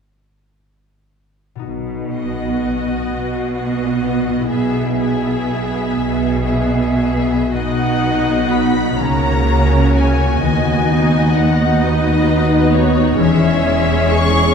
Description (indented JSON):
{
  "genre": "classical, slow romantic movement for symphony orchestra",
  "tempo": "36-44 BPM (dotted quarters)",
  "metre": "6/8",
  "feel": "rubato",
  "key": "B major",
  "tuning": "A4 = 440 Hz",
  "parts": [
    { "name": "concert harp", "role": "arpeggios", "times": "1.6-14.5 s", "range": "B2 to F#5", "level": "-23 LUFS", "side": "left 5 dB", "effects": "none" },
    { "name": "rich chamber double bass section", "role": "bass", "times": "1.7-14.5 s", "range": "E1 to D#2", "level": "-20 LUFS", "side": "right 2 dB", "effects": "none" },
    { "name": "rich symphonic cello section", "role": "bass", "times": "1.7-14.5 s", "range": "D#2 to C#3", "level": "-22 LUFS", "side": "right 2 dB", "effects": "none" },
    { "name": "rich studio violin section", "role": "second line", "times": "2.1-14.5 s", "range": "F#4 to F#5", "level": "-22 LUFS", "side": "left 3 dB", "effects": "none" },
    { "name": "clear symphonic viola section", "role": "accompaniment", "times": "2.1-14.5 s", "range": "G#3 to D#4", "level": "-19 LUFS", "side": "equal", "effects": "none" },
    { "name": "clear symphonic violin section", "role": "melody", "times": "2.2-14.5 s", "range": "C#5 to C#6", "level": "-23 LUFS", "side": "left 4 dB", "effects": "none" }
  ],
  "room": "wet concert hall reverb, RT60 2.0 s",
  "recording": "heard from further back in the room",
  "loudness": "-14 LUFS",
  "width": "side -6 dB against mid",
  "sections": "1.7-7.5 A section; 7.5-14.5 B section",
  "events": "none",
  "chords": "1.7 B; 4.5 E/B; 7.5 B; 9.0 A#dim/C#; 10.4 B/D#; 13.2 C#m/E"
}